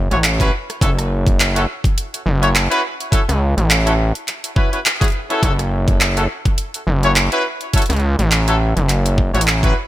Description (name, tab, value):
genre	glitch hop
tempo	104 BPM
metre	4/4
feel	swing 56% on 16ths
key	F# minor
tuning	A4 = 441 Hz
part	gritty driven synth bass	bass	0.0-9.7 s	F#1 to C#2	-16 LUFS	equal	tube saturation
part	clear horn section	stabs	0.1-9.7 s	C#4 to C#5	-22 LUFS	equal	vintage 12-bit sampler grit, sidechain pumping, digital delay
part	dubstep drum kit	drums	0.1-9.7 s	handclaps, hi-hat, rim click	-20 LUFS	right 1 dB	small room ambience, gated reverb
part	electronic kick drum	drums	0.4-9.7 s	none	-17 LUFS	equal	small room ambience
room	little or no reverb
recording	bright 1980s-style digital production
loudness	-14 LUFS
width	side -14 dB against mid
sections	0.0-9.9 A section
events	none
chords	0.0 F#m7